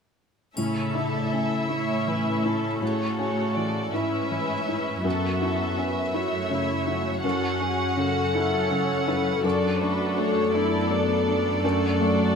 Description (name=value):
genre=cinematic, emotional film score for orchestra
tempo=54 BPM (dotted quarters)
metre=6/8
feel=rubato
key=A major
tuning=A4 = 439 Hz
part: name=muted studio violin section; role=second line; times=0.6-12.4 s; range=F#4 to F#5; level=-29 LUFS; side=equal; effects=none
part: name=felt-muted upright piano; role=accompaniment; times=0.6-12.4 s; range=F#2 to E4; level=-28 LUFS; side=equal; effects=none
part: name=muted studio viola section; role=accompaniment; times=0.6-12.4 s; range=C#3 to A4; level=-29 LUFS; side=left 1 dB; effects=none
part: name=concert harp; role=arpeggios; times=0.6-12.4 s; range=F#2 to C#6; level=-30 LUFS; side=left 7 dB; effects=none
part: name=muted studio cello section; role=bass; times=0.6-12.4 s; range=F#2 to A2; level=-30 LUFS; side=right 2 dB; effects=none
part: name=triangle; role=percussion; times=0.6-2.0 s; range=none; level=-42 LUFS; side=left 1 dB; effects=none
room=moderate stone room reverb, RT60 1.2 s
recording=close, detailed microphones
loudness=-22 LUFS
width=side -6 dB against mid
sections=0.6-12.4 A section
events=none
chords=0.6 A; 5.0 F#m7; 9.4 D/F#